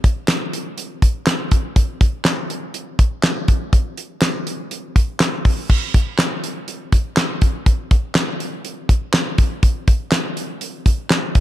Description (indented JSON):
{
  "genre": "pop",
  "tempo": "122 BPM",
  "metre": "4/4",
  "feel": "straight",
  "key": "none",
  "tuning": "none",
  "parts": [
    { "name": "damped 70s drum kit", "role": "drums", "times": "0.0-11.4 s", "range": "crash cymbal, handclaps, hi-hat, kick drum, snare drum", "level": "-16 LUFS", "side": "equal", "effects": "none" }
  ],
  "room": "light reverb",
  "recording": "dark, warm production",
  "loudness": "-16 LUFS",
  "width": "side -14 dB against mid",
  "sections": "0.0-5.7 A section; 5.7-11.4 B section",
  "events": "none",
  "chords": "none"
}